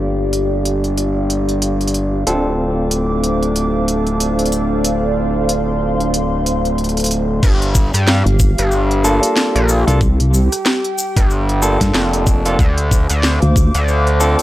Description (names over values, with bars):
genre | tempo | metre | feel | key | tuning
glitch hop | 93 BPM | 4/4 | swing 58% on 16ths | G minor | A4 = 435 Hz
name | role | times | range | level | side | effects
dark analog pad | sustained chords | 0.0-14.4 s | G4 to D6 | -23 LUFS | equal | chorus, sidechain pumping
barky tine electric piano | stabs | 0.0-14.4 s | Bb3 to A4 | -22 LUFS | equal | sidechain pumping, tape echo
gritty driven synth bass | bass | 0.0-14.4 s | D1 to G2 | -17 LUFS | equal | none
warbly tape-like pad | texture | 0.0-7.4 s | D4 to F5 | -23 LUFS | right 1 dB | chorus, built-in reverb, phaser, sidechain pumping
drum and bass drum kit | drums | 0.3-14.4 s | crash cymbal, hi-hat, rim click, snare drum | -20 LUFS | equal | none
electronic kick drum | drums | 7.4-13.7 s | none | -14 LUFS | equal | none
cabasa | percussion | 7.4-14.4 s | none | -25 LUFS | left 2 dB | none
vowel-sweep wobble bass | bass | 8.3-13.7 s | G1 to G2 | -13 LUFS | equal | chorus
room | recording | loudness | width
little or no reverb | dry, gritty hardware recording, transformer saturation | -13 LUFS | side -15 dB against mid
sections
0.0-7.4 A section; 7.4-14.4 B section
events
filter sweep on tine electric piano 0.0-7.4; filter sweep on analog synth pad 0.0-7.4; drop 7.4-14.4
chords
0.0 Gm7; 2.3 Dm7; 7.4 Gm7; 12.6 Dm7